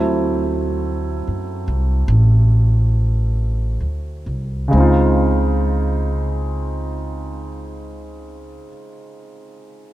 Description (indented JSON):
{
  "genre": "jazz ballad",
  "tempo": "42-53 BPM",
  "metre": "4/4",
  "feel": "swing 68% on 8ths",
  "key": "unclear",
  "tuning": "A4 = 444 Hz",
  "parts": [
    { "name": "warm concert grand piano", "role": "accompaniment", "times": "0.0-9.9 s", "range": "Db3 to F4", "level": "-22 LUFS", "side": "right 1 dB", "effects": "none" },
    { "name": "upright bass", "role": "bass", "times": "0.0-8.6 s", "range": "A1 to F#2", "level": "-18 LUFS", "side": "equal", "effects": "none" }
  ],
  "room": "light reverb, small room reverb",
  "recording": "none",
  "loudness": "-16 LUFS",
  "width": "side -15 dB against mid",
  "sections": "0.0-4.7 A section; 4.7-9.9 B section",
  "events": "slowing down 0.0-4.7",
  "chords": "0.0 D7; 4.7 Dbmaj9"
}